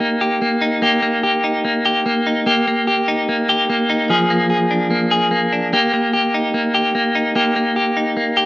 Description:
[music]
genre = indie pop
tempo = 147 BPM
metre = 4/4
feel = straight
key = Eb major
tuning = A4 = 440 Hz
[part]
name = electric guitar at the edge of break-up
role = solo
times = 0.0-8.5 s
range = F3 to Ab4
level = -14 LUFS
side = equal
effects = harmonic tremolo, slapback echo
[sound]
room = little or no reverb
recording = recorded outdoors, with no room sound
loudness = -14 LUFS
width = side -19 dB against mid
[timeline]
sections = 0.0-8.5 A section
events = none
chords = 0.0 Eb/Bb; 4.1 Bb7; 5.7 Eb/Bb

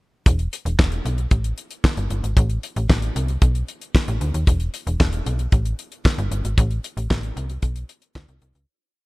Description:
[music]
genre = early-eighties boogie funk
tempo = 114 BPM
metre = 4/4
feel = straight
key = E minor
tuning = A4 = 439 Hz
[part]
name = slap-like FM bass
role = bass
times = 0.3-8.7 s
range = E1 to D#2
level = -22 LUFS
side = equal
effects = none
[part]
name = damped 70s drum kit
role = drums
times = 0.3-8.7 s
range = handclaps, hi-hat, kick drum, snare drum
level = -19 LUFS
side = equal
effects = gated reverb
[sound]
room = little or no reverb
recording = none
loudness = -19 LUFS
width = side -22 dB against mid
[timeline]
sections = 0.3-8.7 breakdown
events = fade-out 6.6-8.7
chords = none

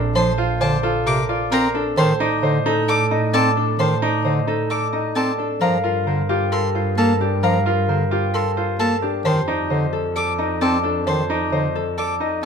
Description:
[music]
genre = classical, minimalist pattern music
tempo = 132 BPM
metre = 4/4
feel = straight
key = F mixolydian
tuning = A4 = 440 Hz
[part]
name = Celtic harp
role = melody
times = 0.0-12.4 s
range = G4 to A5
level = -23 LUFS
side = left 7 dB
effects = none
[part]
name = clear concert grand piano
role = arpeggios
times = 0.0-12.4 s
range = D4 to C5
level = -23 LUFS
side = right 5 dB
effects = none
[part]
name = rich double bass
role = bass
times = 0.0-12.4 s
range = Bb1 to A2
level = -25 LUFS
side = right 4 dB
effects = none
[part]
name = warm bass clarinet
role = accompaniment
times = 0.2-11.7 s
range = C3 to C4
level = -23 LUFS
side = equal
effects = none
[part]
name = warm violin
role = arpeggios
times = 0.2-12.1 s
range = A5 to D6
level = -26 LUFS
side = left 4 dB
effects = none
[sound]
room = moderate large studio reverb, RT60 1.4 s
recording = close, detailed microphones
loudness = -17 LUFS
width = side -6 dB against mid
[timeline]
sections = 0.0-12.4 A section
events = none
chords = 0.0 Bbmaj7; 2.0 Cm69/A; 5.6 Gm9; 9.2 F7

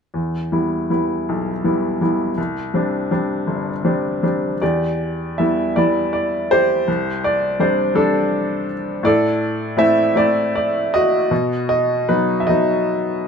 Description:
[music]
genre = classical, lyrical solo piano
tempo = 54 BPM (dotted quarters)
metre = 6/8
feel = uneven beats, rubato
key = E minor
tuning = A4 = 440 Hz
[part]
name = bright upright piano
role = solo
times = 0.1-13.3 s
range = G1 to E5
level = -16 LUFS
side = equal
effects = none
[sound]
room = light reverb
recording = minimal, uncompressed stereo recording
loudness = -16 LUFS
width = side -6 dB against mid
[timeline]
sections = 0.1-4.6 A section; 4.6-13.3 B section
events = none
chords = 0.1 Em; 2.4 Csus2; 4.6 Em; 6.9 Csus2; 9.0 Am; 11.3 B

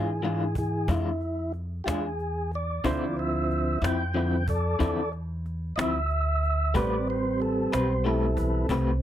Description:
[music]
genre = slow blues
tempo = 61 BPM (dotted quarters)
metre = 12/8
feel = straight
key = unclear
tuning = A4 = 436 Hz
[part]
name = electric guitar through a small old amp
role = accompaniment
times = 0.0-8.9 s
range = D3 to B4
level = -29 LUFS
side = left 4 dB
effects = tremolo
[part]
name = warm grand piano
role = accompaniment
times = 0.0-9.0 s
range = C4 to D5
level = -35 LUFS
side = right 4 dB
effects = none
[part]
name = mellow tonewheel organ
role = sustained chords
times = 0.0-9.0 s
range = D3 to G5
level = -28 LUFS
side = right 1 dB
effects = slow rotary speaker
[part]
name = upright bass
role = bass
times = 0.0-9.0 s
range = A1 to G#2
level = -29 LUFS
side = equal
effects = none
[part]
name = cajon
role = drums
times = 0.2-8.8 s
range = none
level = -33 LUFS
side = equal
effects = none
[sound]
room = light reverb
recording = none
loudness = -25 LUFS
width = side -11 dB against mid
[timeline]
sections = 0.0-9.0 A section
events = tonewheel organ solo 0.0-9.0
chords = 0.0 E7b9; 2.8 Dm9; 6.8 Am9

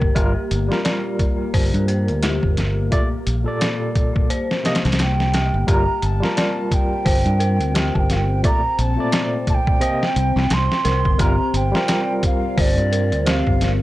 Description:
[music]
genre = trip hop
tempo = 87 BPM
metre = 4/4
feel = swing 58% on 16ths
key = G minor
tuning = A4 = 439 Hz
[part]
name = deep dark ambient pad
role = sustained chords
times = 0.0-13.8 s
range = Bb3 to C5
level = -28 LUFS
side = left 2 dB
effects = chorus, built-in reverb, vintage 12-bit sampler grit
[part]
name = dark detuned synth bell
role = arpeggios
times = 0.0-13.8 s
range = G4 to D5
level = -28 LUFS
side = left 3 dB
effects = chorus, tape echo
[part]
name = fingered electric bass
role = bass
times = 0.0-13.8 s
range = G1 to G2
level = -20 LUFS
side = equal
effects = none
[part]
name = trip hop sampler-style drum kit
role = drums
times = 0.0-13.8 s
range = hi-hat, kick drum, snare drum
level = -20 LUFS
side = equal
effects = overdrive
[part]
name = wind-like tuned noise texture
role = texture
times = 0.0-5.7 s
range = Bb3 to Bb4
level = -41 LUFS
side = equal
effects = none
[part]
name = barky tine electric piano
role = accompaniment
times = 0.1-13.8 s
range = Bb2 to Eb5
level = -26 LUFS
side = equal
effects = overdrive, tremolo
[part]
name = breathy mellow wooden flute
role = melody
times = 5.0-13.7 s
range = D5 to C6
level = -24 LUFS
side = right 2 dB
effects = tape echo
[sound]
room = little or no reverb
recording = dry, gritty hardware recording, cassette tape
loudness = -17 LUFS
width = side -16 dB against mid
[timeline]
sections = 0.0-5.7 A section; 5.7-13.8 B section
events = none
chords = 0.2 Gm7; 2.9 Bbmaj7; 4.3 C7(no3); 5.7 Gm7; 8.4 Bbmaj7; 9.8 Cm7; 11.2 Gm7

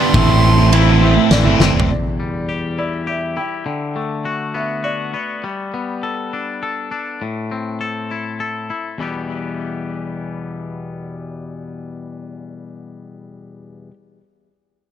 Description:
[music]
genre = post-rock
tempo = 101 BPM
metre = 3/4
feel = straight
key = E minor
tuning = A4 = 440 Hz
[part]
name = rich violin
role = melody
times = 0.0-1.3 s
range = C6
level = -22 LUFS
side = right 3 dB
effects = digital delay
[part]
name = sweeping resonant pad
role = sustained chords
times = 0.1-1.9 s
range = D4 to A5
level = -30 LUFS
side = equal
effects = none
[part]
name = felt-muted upright piano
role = arpeggios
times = 0.0-5.4 s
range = D5 to G5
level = -28 LUFS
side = equal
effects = digital delay
[part]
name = twangy electric guitar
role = arpeggios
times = 0.0-13.9 s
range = E2 to A4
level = -23 LUFS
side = left 4 dB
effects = digital delay
[part]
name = crunchy overdriven guitar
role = riff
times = 0.0-1.9 s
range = A2 to E4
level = -20 LUFS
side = left 14 dB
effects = phaser
[part]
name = sludgy distorted guitar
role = riff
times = 0.0-1.9 s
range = G2 to E4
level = -16 LUFS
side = right 10 dB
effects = overdrive
[part]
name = fingered electric bass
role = bass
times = 0.1-1.9 s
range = E1 to A1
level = -14 LUFS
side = equal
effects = none
[part]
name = oversized low-tuned drum kit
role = drums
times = 0.1-1.9 s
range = kick drum, ride cymbal, snare drum, toms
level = -19 LUFS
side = equal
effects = none
[sound]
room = light reverb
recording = none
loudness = -16 LUFS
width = side -10 dB against mid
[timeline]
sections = 0.0-1.9 A section; 1.9-9.0 B section; 9.0-12.6 C section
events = drum fill 1.6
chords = 0.1 Am; 1.9 Em; 3.7 D6; 5.4 Gadd9; 7.2 Am; 9.0 Em

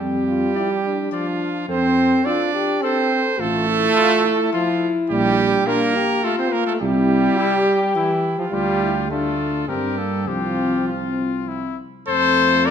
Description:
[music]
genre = classical, brass quintet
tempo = 105 BPM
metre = 3/4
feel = straight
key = unclear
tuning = A4 = 441 Hz
[part]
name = clear trumpet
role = second line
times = 0.0-12.7 s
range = E4 to D5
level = -24 LUFS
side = right 6 dB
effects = none
[part]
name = warm French horn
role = accompaniment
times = 0.0-12.7 s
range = A3 to A4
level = -24 LUFS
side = left 4 dB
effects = none
[part]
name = warm trombone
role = accompaniment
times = 0.0-12.7 s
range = E3 to D4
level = -22 LUFS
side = right 3 dB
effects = none
[part]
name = mellow tuba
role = bass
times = 0.0-12.7 s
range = A1 to G2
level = -23 LUFS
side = equal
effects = none
[part]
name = warm trumpet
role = melody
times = 0.6-12.7 s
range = E4 to D5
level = -24 LUFS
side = left 9 dB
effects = none
[sound]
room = wet recital hall reverb, RT60 1.4 s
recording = none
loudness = -17 LUFS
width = side -8 dB against mid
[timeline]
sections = 0.0-12.1 A section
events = none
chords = 0.0 Dm/F; 1.7 F; 3.4 F/A; 5.1 Gm7/Bb; 6.8 C; 8.5 Dm; 9.7 Gm; 10.3 Csus4; 11.5 C; 12.1 F

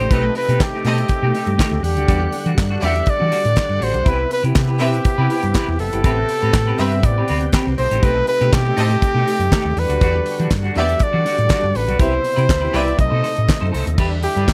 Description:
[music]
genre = disco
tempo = 121 BPM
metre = 4/4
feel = straight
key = E minor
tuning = A4 = 440 Hz
[part]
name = clear flugelhorn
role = melody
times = 0.0-14.5 s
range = G4 to E5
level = -23 LUFS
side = equal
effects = none
[part]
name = semi-hollow electric guitar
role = accompaniment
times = 0.0-14.5 s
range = G3 to C5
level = -27 LUFS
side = equal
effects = harmonic tremolo
[part]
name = overdriven tonewheel organ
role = sustained chords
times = 0.0-14.5 s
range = B2 to F#5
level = -31 LUFS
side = equal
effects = chorus vibrato, slow rotary speaker
[part]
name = hollow-body short-scale fingered electric bass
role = bass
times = 0.0-14.5 s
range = F#1 to E3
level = -22 LUFS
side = equal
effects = none
[part]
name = clear studio string section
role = second line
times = 0.1-14.5 s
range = B3 to E5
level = -30 LUFS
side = equal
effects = none
[part]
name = damped 70s drum kit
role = drums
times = 0.1-14.5 s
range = crash cymbal, handclaps, hi-hat, kick drum, snare drum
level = -22 LUFS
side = equal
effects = none
[sound]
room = small room ambience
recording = none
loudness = -18 LUFS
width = mono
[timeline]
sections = 0.0-14.0 A section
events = none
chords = 0.0 B7b9b13; 1.8 Em9; 4.1 Cmaj7; 6.0 Am9; 7.8 B7b9b13; 9.8 Em9; 12.0 Cmaj7; 13.0 B7b9; 14.0 Em7

